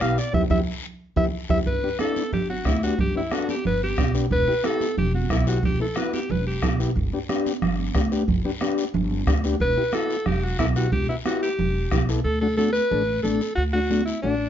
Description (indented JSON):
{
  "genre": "latin, cumbia",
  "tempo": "181 BPM",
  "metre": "4/4",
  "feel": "straight",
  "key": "unclear",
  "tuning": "A4 = 436 Hz",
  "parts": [
    { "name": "bright alto saxophone", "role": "melody", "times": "0.0-6.8, 9.6-14.5 s", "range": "D4 to F5", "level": "-25 LUFS", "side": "equal", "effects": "none" },
    { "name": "overdriven combo organ", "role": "accompaniment", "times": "0.0-14.4 s", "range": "A3 to A4", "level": "-28 LUFS", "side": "left 4 dB", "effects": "none" },
    { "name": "upright bass", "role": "bass", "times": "0.0-14.5 s", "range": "E1 to E2", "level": "-26 LUFS", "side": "equal", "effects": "none" },
    { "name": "bombo", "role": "percussion", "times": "0.0-12.1 s", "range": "none", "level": "-27 LUFS", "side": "right 1 dB", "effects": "none" },
    { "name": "congas", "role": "percussion", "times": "0.0-14.4 s", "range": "none", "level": "-29 LUFS", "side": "right 6 dB", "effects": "none" },
    { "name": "guiro", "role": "percussion", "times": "0.0-14.5 s", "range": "none", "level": "-39 LUFS", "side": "left 6 dB", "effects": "none" }
  ],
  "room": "light reverb",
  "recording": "nothing above 7.5 kHz",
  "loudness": "-21 LUFS",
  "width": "side -10 dB against mid",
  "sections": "0.0-1.7 A section; 1.7-12.2 B section; 12.2-14.5 C section",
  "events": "alto saxophone solo 0.0-1.7; band accent 0.3-1.7; drum fill 0.8-1.7; transistor combo organ fill 1.0-1.7",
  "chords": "0.0 Em; 1.7 G; 4.3 Em; 7.0 G; 9.6 Em; 12.2 D"
}